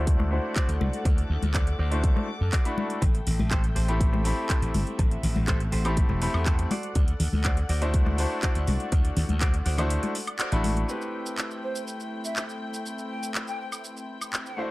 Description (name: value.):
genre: nu-disco, nu disco.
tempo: 122 BPM.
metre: 4/4.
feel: straight.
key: A dorian.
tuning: A4 = 440 Hz.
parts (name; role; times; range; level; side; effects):
bright grand piano; accompaniment; 0.0-14.7 s; A3 to B5; -32 LUFS; left 1 dB; sidechain pumping, low-pass filter, tape echo.
dark studio string section; sustained chords; 0.0-14.7 s; D3 to D6; -38 LUFS; left 2 dB; sidechain pumping.
slap bass; bass; 0.0-10.8 s; E1 to F#2; -26 LUFS; equal; tube saturation.
electronic kick drum; drums; 0.1-9.5 s; none; -24 LUFS; equal; none.
house drum kit; drums; 0.1-14.6 s; handclaps, hi-hat, shaker, woodblock; -33 LUFS; equal; none.
direct-recorded clean electric guitar; riff; 0.2-10.7 s; F#4 to D5; -38 LUFS; right 1 dB; lush chorus, low-pass filter, tape echo.
congas; percussion; 0.2-10.7 s; none; -32 LUFS; left 3 dB; none.
breathy mellow jazz flute; melody; 11.6-14.6 s; C5 to G5; -36 LUFS; equal; tape echo.
room: studio reverb.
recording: dry, gritty hardware recording, transformer saturation.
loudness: -24 LUFS.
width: side -19 dB against mid.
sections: 0.0-10.9 A section; 10.9-14.7 B section.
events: break 9.9-10.9; band accent 10.4.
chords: 0.0 D7; 3.0 Am7; 6.7 D7; 10.9 Am7.